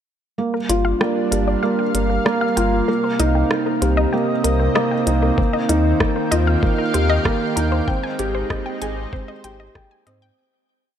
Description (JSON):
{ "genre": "piano and strings electronica", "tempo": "96 BPM", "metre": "4/4", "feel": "straight", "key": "unclear", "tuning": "A4 = 440 Hz", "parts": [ { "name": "lush unison pad", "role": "sustained chords", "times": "0.4-10.4 s", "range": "C3 to G5", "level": "-24 LUFS", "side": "equal", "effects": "chorus" }, { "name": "felt-muted upright piano", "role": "riff", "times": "0.4-10.4 s", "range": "Bb3 to G5", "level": "-21 LUFS", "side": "right 2 dB", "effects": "tape echo" }, { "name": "wide unison pluck", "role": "arpeggios", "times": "0.5-10.3 s", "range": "Bb4 to Ab5", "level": "-27 LUFS", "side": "left 4 dB", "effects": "sidechain pumping, tape echo" }, { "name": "warm sub bass", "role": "bass", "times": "0.7-10.3 s", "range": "G1 to Ab2", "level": "-20 LUFS", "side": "left 1 dB", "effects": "sidechain pumping" }, { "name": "minimal click drum kit", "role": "drums", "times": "0.7-10.2 s", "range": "hi-hat, rim click", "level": "-26 LUFS", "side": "right 1 dB", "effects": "overdrive" }, { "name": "electronic kick drum", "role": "drums", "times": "5.4-9.9 s", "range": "none", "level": "-22 LUFS", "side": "left 1 dB", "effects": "overdrive" } ], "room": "light reverb, digital ambience", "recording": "none", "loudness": "-17 LUFS", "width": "side -9 dB against mid", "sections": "0.4-10.4 build", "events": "build-up 0.4-10.4; fade-out 7.0-10.4", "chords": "0.4 Gm7; 2.9 Cm7; 5.4 Eb69; 7.9 Abmaj7", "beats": "| 0.38 1.01 1.63 2.26 | 2.88 3.51 4.13 4.76 | 5.38 6.01 6.63 7.26 | 7.88 8.51 9.13 9.76" }